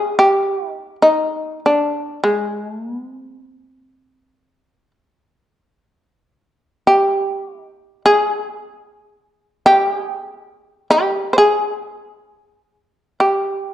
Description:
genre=japanese traditional, Japanese chamber music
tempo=free time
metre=none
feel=none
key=unclear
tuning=A4 = 440 Hz
part: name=shamisen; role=solo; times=0.0-13.7 s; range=C4 to C5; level=-15 LUFS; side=equal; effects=none
room=moderate recital hall reverb, RT60 1.4 s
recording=dark, warm production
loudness=-15 LUFS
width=side -12 dB against mid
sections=0.0-5.8 A section; 5.8-13.7 A section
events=none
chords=none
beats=free time

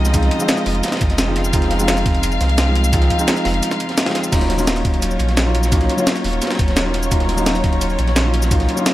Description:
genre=liquid drum and bass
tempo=172 BPM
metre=4/4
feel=straight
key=Eb dorian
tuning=A4 = 440 Hz
part: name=felt-muted upright piano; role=accompaniment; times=0.0-8.9 s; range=F3 to F4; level=-21 LUFS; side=equal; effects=digital delay
part: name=dark chamber string section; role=sustained chords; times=0.0-8.9 s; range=Gb3 to F5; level=-25 LUFS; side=left 2 dB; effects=vintage 12-bit sampler grit, sidechain pumping
part: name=warm sub bass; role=bass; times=0.0-8.7 s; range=Eb1 to C2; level=-19 LUFS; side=equal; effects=tube saturation
part: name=breakbeat sampler-style drum kit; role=drums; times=0.1-8.9 s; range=crash cymbal, hi-hat, shaker, snare drum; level=-21 LUFS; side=equal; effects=none
part: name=crunchy breakbeat drum kit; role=drums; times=0.1-8.9 s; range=hi-hat, ride cymbal, snare drum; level=-27 LUFS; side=equal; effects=high-pass filter on cymbals, high-pass filter on hats, high-pass filter on snare, high-pass filter on room
part: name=electronic kick drum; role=drums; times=0.1-8.6 s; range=none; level=-18 LUFS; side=equal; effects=none
room=light reverb, studio reverb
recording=none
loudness=-15 LUFS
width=side -15 dB against mid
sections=0.0-8.9 A section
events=break 3.6-4.3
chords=0.0 Fm7; 4.3 Ebm9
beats=| 0.14 0.49 0.84 1.19 | 1.53 1.88 2.23 2.58 | 2.93 3.28 3.63 3.98 | 4.33 4.67 5.02 5.37 | 5.72 6.07 6.42 6.77 | 7.12 7.46 7.81 8.16 | 8.51 8.86

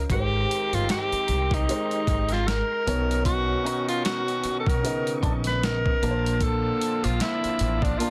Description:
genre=R&B, neo-soul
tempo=76 BPM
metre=4/4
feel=swing 58% on 16ths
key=unclear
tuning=A4 = 445 Hz
part: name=breathy tenor saxophone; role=melody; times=0.0-8.1 s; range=D4 to B4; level=-29 LUFS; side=equal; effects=none
part: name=dark concert grand piano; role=accompaniment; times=0.0-8.1 s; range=Bb2 to A5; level=-33 LUFS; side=equal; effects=none
part: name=tonewheel organ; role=sustained chords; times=0.0-8.1 s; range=B3 to D6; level=-43 LUFS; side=equal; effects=none
part: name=upright bass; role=bass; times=0.0-7.9 s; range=G1 to C2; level=-30 LUFS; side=equal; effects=none
part: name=mellow horn section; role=stabs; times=0.1-8.1 s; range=D3 to G4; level=-38 LUFS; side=equal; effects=none
part: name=boom bap sampler-style drum kit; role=drums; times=0.1-8.1 s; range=hi-hat, kick drum, snare drum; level=-31 LUFS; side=equal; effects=none
part: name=electric guitar through a small old amp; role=second line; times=2.3-5.5 s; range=C4 to Bb4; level=-37 LUFS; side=equal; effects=wah
room=little or no reverb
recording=dense, heavily limited modern master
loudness=-25 LUFS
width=mono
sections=0.0-8.1 A section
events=none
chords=0.1 Abmaj9; 2.9 Bmaj9; 6.0 Bbmaj9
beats=| 0.09 0.88 1.67 2.46 | 3.25 4.04 4.83 5.62 | 6.41 7.20 7.99

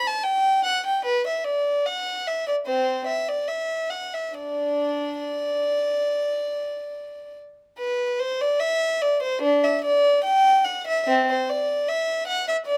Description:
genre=classical, baroque-style suite movement for unaccompanied violin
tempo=72 BPM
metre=4/4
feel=uneven beats, rubato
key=unclear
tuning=A4 = 435 Hz
part: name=rich violin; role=solo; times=0.0-12.8 s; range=C4 to A5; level=-24 LUFS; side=equal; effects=none
room=light reverb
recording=none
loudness=-24 LUFS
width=mono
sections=0.0-7.8 A section; 7.8-12.8 B section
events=none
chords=none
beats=0.25 | 1.06 1.87 2.67 3.50 | 4.36 5.23 6.09 6.94 | 7.79 8.61 9.43 10.24 | 11.07 11.89 12.69

